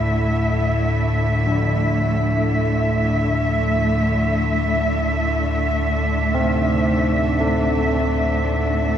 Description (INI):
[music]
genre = dark ambient drone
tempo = free time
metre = none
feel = none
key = unclear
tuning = A4 = 439 Hz
[part]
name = warm studio cello section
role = sustained chords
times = 0.0-9.0 s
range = D3 to E5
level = -20 LUFS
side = equal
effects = none
[part]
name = deep rumbling drone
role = drone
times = 0.0-9.0 s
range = D2 to A2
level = -21 LUFS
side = equal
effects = built-in reverb
[part]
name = carillon bells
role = arpeggios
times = 1.5-9.0 s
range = D3 to C4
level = -25 LUFS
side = left 2 dB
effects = tape echo
[sound]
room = wet cathedral reverb, RT60 5.7 s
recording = none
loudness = -17 LUFS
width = side -9 dB against mid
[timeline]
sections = 0.0-9.0 A section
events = none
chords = 0.0 Dsus2